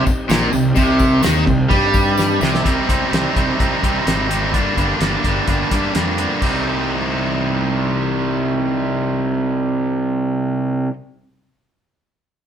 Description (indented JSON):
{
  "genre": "classic rock",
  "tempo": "127 BPM",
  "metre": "4/4",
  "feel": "straight",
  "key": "C minor",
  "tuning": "A4 = 440 Hz",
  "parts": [
    { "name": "tonewheel organ", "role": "sustained chords", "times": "0.0-2.6 s", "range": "G3 to G4", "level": "-27 LUFS", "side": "left 1 dB", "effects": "none" },
    { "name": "cranked stack guitar", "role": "riff", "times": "0.0-10.9 s", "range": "G2 to Eb4", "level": "-22 LUFS", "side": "left 7 dB", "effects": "overdrive" },
    { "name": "distorted electric guitar", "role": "riff", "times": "0.0-10.9 s", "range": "G2 to Eb4", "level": "-19 LUFS", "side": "right 5 dB", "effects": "overdrive" },
    { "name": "fuzz fingered electric bass", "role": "bass", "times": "0.0-10.9 s", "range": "G1 to G2", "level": "-22 LUFS", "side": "equal", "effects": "overdrive" },
    { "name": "cloth-damped thuddy drum kit", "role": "drums", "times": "0.1-6.5 s", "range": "crash cymbal, hi-hat, kick drum, snare drum", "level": "-21 LUFS", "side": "left 1 dB", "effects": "none" },
    { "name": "tambourine", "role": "percussion", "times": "0.1-2.5 s", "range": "none", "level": "-35 LUFS", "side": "left 5 dB", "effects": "none" }
  ],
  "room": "wet studio reverb, RT60 0.8 s",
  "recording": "band playing live in one room",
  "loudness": "-15 LUFS",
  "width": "side -8 dB against mid",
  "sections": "0.0-2.6 A section; 2.6-6.4 B section; 6.4-10.2 C section",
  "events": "drum fill 2.2-2.6",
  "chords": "0.0 Cm; 4.5 Gm; 6.4 Cm",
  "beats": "0.30 | 0.77 1.24 1.71 2.18 | 2.65 3.12 3.59 4.06 | 4.53 5.00 5.47 5.95 | 6.42 6.89 7.36 7.83 | 8.31 8.78 9.25 9.72"
}